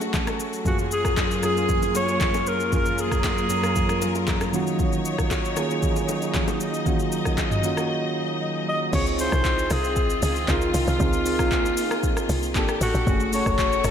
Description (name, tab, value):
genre	amapiano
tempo	116 BPM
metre	4/4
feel	straight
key	Db major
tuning	A4 = 441 Hz
part	soft electric-piano-like synth keys	accompaniment	0.0-13.9 s	Gb2 to Bb4	-27 LUFS	right 2 dB	chorus
part	rich studio string section	sustained chords	0.0-13.9 s	A2 to Eb5	-29 LUFS	left 2 dB	none
part	afro-pop drum kit	drums	0.0-13.9 s	crash cymbal, handclaps, hi-hat, kick drum, rim click, shaker, toms	-26 LUFS	equal	none
part	bongos and congas	percussion	0.0-7.8 s	none	-34 LUFS	left 3 dB	none
part	breathy alto saxophone	melody	0.7-4.5, 8.7-13.9 s	F4 to Eb5	-25 LUFS	equal	analog delay
part	tight log drum bass	bass	8.9-13.9 s	F1 to Db2	-26 LUFS	equal	none
room	moderate plate reverb, RT60 1.8 s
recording	dreamy mix soaked in reverb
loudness	-21 LUFS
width	side -8 dB against mid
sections	0.0-8.9 A section; 8.9-13.9 B section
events	break 7.9-8.9; drop 8.9-13.9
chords	0.0 Gbmadd9; 0.7 Gbmaj9; 4.5 Ebm7; 8.9 Dbmaj9; 12.6 Gmadd9; 13.1 Gbmadd9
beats	0.14 | 0.66 1.17 1.69 2.21 | 2.73 3.24 3.76 4.28 | 4.79 5.31 5.83 6.34 | 6.86 7.38 7.90 8.41 | 8.93 9.45 9.97 10.48 | 11.00 11.52 12.04 12.55 | 13.07 13.59